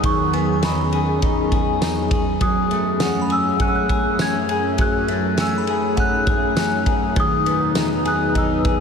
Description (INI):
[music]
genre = dream pop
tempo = 101 BPM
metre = 4/4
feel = straight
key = F# dorian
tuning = A4 = 440 Hz
[part]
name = celesta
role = melody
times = 0.0-8.8 s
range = B5 to G#6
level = -24 LUFS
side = left 1 dB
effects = lush chorus, diffuse ambient delay
[part]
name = warbly tape-like pad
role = sustained chords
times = 0.0-8.8 s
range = E2 to B4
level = -22 LUFS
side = right 1 dB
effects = chorus, built-in reverb
[part]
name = semi-hollow electric guitar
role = arpeggios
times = 0.0-8.8 s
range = D#3 to G#4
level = -23 LUFS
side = left 4 dB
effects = wide subtle chorus, diffuse ambient delay
[part]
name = loose indie drum kit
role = drums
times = 0.0-8.8 s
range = kick drum, ride cymbal, snare drum, tambourine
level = -23 LUFS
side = right 1 dB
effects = none
[part]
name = glassy synth bell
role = texture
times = 0.3-7.0 s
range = F#5 to B5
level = -35 LUFS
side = right 1 dB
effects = chorus, diffuse ambient delay
[sound]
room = wet huge ambient reverb, RT60 7.3 s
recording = dreamy mix soaked in reverb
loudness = -17 LUFS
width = side -6 dB against mid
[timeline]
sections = 0.0-8.8 A section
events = none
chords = 0.0 Emaj7; 2.4 F#madd9; 7.2 Emaj7